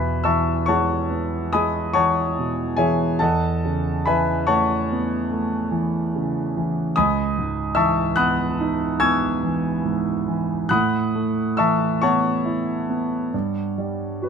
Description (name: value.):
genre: classical, impressionist solo piano.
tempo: 44-50 BPM (dotted quarters).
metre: 9/8.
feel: rubato.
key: unclear.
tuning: A4 = 443 Hz.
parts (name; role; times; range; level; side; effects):
warm concert grand piano; solo; 0.0-14.3 s; C#2 to G#6; -19 LUFS; equal; none.
room: light reverb.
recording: close, detailed microphones.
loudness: -19 LUFS.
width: side -6 dB against mid.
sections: 0.0-14.3 A section.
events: none.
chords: 0.0 A69/E; 7.0 C#m11; 10.7 Aadd9; 13.3 Gmaj7(no3).